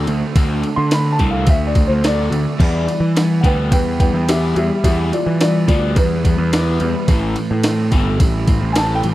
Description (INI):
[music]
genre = indie rock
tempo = 107 BPM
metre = 4/4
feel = straight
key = unclear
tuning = A4 = 440 Hz
[part]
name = fuzz guitar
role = riff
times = 0.0-9.1 s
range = A2 to F#4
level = -26 LUFS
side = right 8 dB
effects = distortion, wide subtle chorus
[part]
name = raw garage guitar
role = riff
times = 0.0-9.1 s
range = A2 to C4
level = -25 LUFS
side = left 6 dB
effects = overdrive, phaser
[part]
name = fuzz picked electric bass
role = bass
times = 0.0-9.1 s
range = G1 to E3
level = -18 LUFS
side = equal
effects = overdrive
[part]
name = breakbeat sampler-style drum kit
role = drums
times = 0.1-9.1 s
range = crash cymbal, kick drum, ride cymbal, snare drum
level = -17 LUFS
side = equal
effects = none
[part]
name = dark upright piano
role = melody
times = 0.8-9.1 s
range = F4 to C6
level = -22 LUFS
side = equal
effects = slapback echo
[sound]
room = little or no reverb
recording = dry, close 1970s-style studio recording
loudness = -14 LUFS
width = side -16 dB against mid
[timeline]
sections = 0.0-9.1 A section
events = upright piano solo 0.0-9.1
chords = 0.0 D7; 2.6 Em; 7.1 Am7